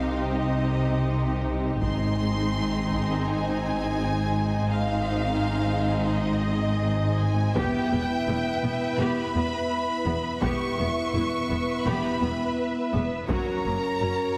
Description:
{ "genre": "cinematic, epic orchestral film score", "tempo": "84 BPM", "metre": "4/4", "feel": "straight", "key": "unclear", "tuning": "A4 = 440 Hz", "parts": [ { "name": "clear symphonic violin section", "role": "melody", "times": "0.0-14.4 s", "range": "Eb5 to C#6", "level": "-34 LUFS", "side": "equal", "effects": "none" }, { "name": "rich symphonic violin section", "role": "second line", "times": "0.0-14.4 s", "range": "G4 to E5", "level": "-35 LUFS", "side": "equal", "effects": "none" }, { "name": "clear symphonic viola section", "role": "accompaniment", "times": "0.0-14.1 s", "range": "F#3 to G4", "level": "-34 LUFS", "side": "equal", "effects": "none" }, { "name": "mellow French horn section", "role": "sustained chords", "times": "0.0-14.4 s", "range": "C4 to E4", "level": "-34 LUFS", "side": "equal", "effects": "none" }, { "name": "dark symphonic cello section", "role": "bass", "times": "0.0-14.1 s", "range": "E2 to C3", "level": "-32 LUFS", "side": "equal", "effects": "none" }, { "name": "rich symphonic double bass section", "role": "bass", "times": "0.0-14.1 s", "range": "E1 to C2", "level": "-32 LUFS", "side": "equal", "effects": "none" }, { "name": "taiko ensemble", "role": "drums", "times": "1.8-3.2, 7.6-14.0 s", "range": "none", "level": "-35 LUFS", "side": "equal", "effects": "none" } ], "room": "wet scoring stage reverb, RT60 2.1 s", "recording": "heavily compressed radio sound", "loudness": "-26 LUFS", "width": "mono", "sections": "0.0-14.4 A section", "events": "none", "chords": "0.0 Cm; 1.8 Ab; 7.6 Em; 13.3 F#" }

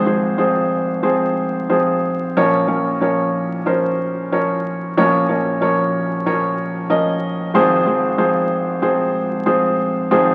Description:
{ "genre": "folk", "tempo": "93 BPM", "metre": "4/4", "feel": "straight", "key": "F minor", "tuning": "A4 = 439 Hz", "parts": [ { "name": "felt-muted upright piano", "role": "solo", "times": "0.0-10.3 s", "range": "Ab1 to Eb5", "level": "-18 LUFS", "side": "equal", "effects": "none" } ], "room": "wet studio reverb, RT60 0.9 s", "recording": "very old 78 rpm record, vinyl crackle", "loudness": "-18 LUFS", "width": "mono", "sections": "0.0-10.3 A section", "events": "none", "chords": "0.0 Fm/Ab; 2.4 Bbm; 7.5 Fm/Ab" }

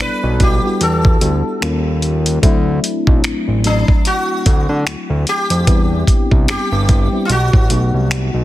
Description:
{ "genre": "contemporary R&B", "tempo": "74 BPM", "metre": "4/4", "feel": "swing 58% on 16ths", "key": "unclear", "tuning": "A4 = 439 Hz", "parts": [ { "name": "sitar", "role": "melody", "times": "0.0-8.4 s", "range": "D4 to B4", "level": "-20 LUFS", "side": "equal", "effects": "ping-pong delay" }, { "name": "mellow FM electric piano", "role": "accompaniment", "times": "0.0-8.4 s", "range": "F#3 to A4", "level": "-21 LUFS", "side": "left 3 dB", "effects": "chorus" }, { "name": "fat analog bass", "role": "bass", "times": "0.0-8.4 s", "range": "G1 to D3", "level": "-17 LUFS", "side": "equal", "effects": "none" }, { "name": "dusty soul sampler-style drum kit", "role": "drums", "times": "0.0-8.3 s", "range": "finger snaps, hi-hat, kick drum", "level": "-15 LUFS", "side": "equal", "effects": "soft clipping on snare" } ], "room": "digital ambience", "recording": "dense, heavily limited modern master", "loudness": "-12 LUFS", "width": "side -15 dB against mid", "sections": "0.0-8.4 A section", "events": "none", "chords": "0.0 Em9; 1.6 D#9; 2.4 D7; 5.7 Cmaj7; 7.3 B7" }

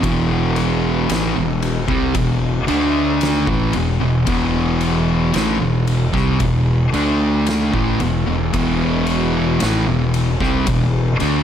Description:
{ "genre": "stoner and doom metal", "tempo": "56 BPM", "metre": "4/4", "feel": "straight", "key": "E minor", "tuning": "A4 = 440 Hz", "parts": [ { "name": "thick fuzz guitar", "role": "riff", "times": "0.0-11.4 s", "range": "E2 to D4", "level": "-19 LUFS", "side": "left 7 dB", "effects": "distortion" }, { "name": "thick fuzz guitar", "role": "riff", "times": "0.0-11.4 s", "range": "E2 to D4", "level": "-20 LUFS", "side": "right 7 dB", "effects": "distortion" }, { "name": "fuzz fingered electric bass", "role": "bass", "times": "0.0-11.4 s", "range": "E1 to D2", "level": "-23 LUFS", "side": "equal", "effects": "overdrive" }, { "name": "oversized low-tuned drum kit", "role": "drums", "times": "0.0-11.4 s", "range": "kick drum, ride cymbal, snare drum", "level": "-24 LUFS", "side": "equal", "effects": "none" } ], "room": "light reverb, small room ambience", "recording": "none", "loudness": "-15 LUFS", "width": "side -9 dB against mid", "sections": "0.0-11.4 A section", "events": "none", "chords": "0.0 Em" }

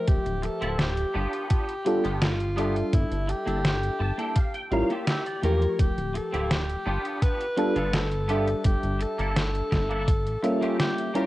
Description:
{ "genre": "vaporwave", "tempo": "84 BPM", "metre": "4/4", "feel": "straight", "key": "unclear", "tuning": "A4 = 437 Hz", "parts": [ { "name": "breathy alto saxophone", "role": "melody", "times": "0.0-11.3 s", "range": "E4 to B4", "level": "-31 LUFS", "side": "equal", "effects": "vintage 12-bit sampler grit, tape echo" }, { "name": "mellow FM electric piano", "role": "accompaniment", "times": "0.0-11.3 s", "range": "F3 to E5", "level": "-28 LUFS", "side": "equal", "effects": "analog chorus" }, { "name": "chorused synth bass", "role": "bass", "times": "0.1-10.4 s", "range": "D1 to E2", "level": "-28 LUFS", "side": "equal", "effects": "none" }, { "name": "detuned 8-bit digital drum machine", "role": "drums", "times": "0.1-11.3 s", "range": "hi-hat, snare drum", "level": "-28 LUFS", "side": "equal", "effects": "studio reverb" }, { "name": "electronic kick drum", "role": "drums", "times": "0.1-10.2 s", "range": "none", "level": "-23 LUFS", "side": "equal", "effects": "studio reverb" }, { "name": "twangy electric guitar", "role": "riff", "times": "0.4-11.3 s", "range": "Bb3 to A5", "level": "-35 LUFS", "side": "right 1 dB", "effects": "ensemble chorus" } ], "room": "light reverb", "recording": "cassette tape", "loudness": "-23 LUFS", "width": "side -16 dB against mid", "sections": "0.0-11.3 A section", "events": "clean electric guitar fill 3.6-5.8", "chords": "0.1 Dm11; 1.1 G7; 2.9 Gm69; 4.4 A7b9b13; 5.8 Dm11; 6.9 G7; 8.7 Gm69; 10.1 A7b9b13" }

